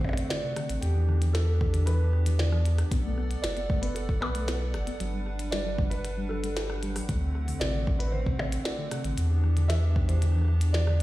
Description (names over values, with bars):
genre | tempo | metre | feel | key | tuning
IDM | 115 BPM | 4/4 | straight | unclear | A4 = 441 Hz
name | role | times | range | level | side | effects
felt-muted upright piano | melody | 0.0-11.0 s | G4 to E5 | -36 LUFS | right 2 dB | ping-pong delay
hollow soft pad | sustained chords | 0.0-11.0 s | D3 to F#5 | -38 LUFS | equal | chorus, vintage 12-bit sampler grit
warm sub bass | bass | 0.0-11.0 s | F#1 to E2 | -26 LUFS | equal | none
electronic kick drum | drums | 0.0-10.1 s | none | -28 LUFS | equal | none
glitchy drum kit | drums | 0.0-11.0 s | hi-hat, percussion blips, rim click, snare drum | -36 LUFS | equal | none
mellow tine electric piano | arpeggios | 0.3-11.0 s | C3 to B3 | -38 LUFS | left 2 dB | ensemble chorus
room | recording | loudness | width
light reverb | played on a big sound system in a bare room, stone room reverb | -25 LUFS | side -17 dB against mid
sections
0.0-11.0 A section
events
none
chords
0.0 D7; 0.8 Em7; 2.9 Bm7; 5.0 Gmaj7; 7.1 D7; 9.2 Em7